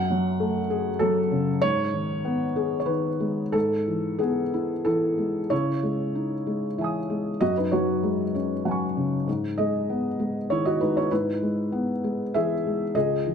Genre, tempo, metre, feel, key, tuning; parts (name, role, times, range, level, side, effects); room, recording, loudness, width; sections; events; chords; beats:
neoclassical minimalist piano; 96 BPM; 3/4; rubato; C# minor; A4 = 440 Hz
felt-muted upright piano; solo; 0.0-13.3 s; C#2 to D#6; -23 LUFS; left 1 dB
moderate recital hall reverb, RT60 1.6 s; close, detailed microphones; -23 LUFS; side -7 dB against mid
0.0-5.5 A section; 5.5-13.3 A section
0.0 F#madd9; 1.6 G#m; 3.5 E/G#; 5.5 C#madd9; 7.4 F#sus2; 9.3 G#m; 11.1 E/G#
0.40 1.01 | 1.63 2.25 2.89 | 3.54 4.21 4.86 | 5.51 6.15 6.78 | 7.41 8.03 8.65 | 9.27 9.88 10.49 | 11.10 11.70 12.34 | 12.94